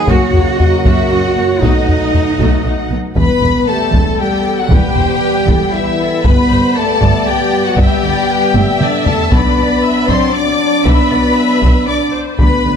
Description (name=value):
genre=cinematic, epic orchestral film score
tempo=117 BPM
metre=3/4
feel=straight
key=E minor from 3.2 s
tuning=A4 = 439 Hz
part: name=warm symphonic violin section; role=melody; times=0.0-12.8 s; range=D5 to D6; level=-19 LUFS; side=left 3 dB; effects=none
part: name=warm symphonic violin section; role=second line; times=0.0-12.8 s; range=D4 to E5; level=-21 LUFS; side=left 5 dB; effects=none
part: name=clear trombone section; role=sustained chords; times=0.0-12.8 s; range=B2 to D4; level=-21 LUFS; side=right 2 dB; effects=none
part: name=rich studio cello section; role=bass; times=0.0-12.7 s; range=E2 to F#4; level=-20 LUFS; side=right 4 dB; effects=none
part: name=warm symphonic viola section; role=accompaniment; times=0.1-12.8 s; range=A3 to E5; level=-22 LUFS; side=equal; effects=none
part: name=dark French horn section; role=sustained chords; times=0.1-12.8 s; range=D3 to F#4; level=-17 LUFS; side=left 2 dB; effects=none
part: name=rich chamber double bass section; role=bass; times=0.1-12.7 s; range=E1 to F#2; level=-19 LUFS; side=right 3 dB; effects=none
part: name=taiko ensemble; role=drums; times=0.1-12.8 s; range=none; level=-15 LUFS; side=equal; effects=none
room=moderate scoring stage reverb, RT60 2.0 s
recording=none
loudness=-10 LUFS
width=side -7 dB against mid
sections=0.0-3.2 A section; 3.2-12.8 B section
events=drum fill 8.6-9.3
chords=0.1 F#; 1.6 B7; 3.2 Em; 6.2 G; 9.3 Bm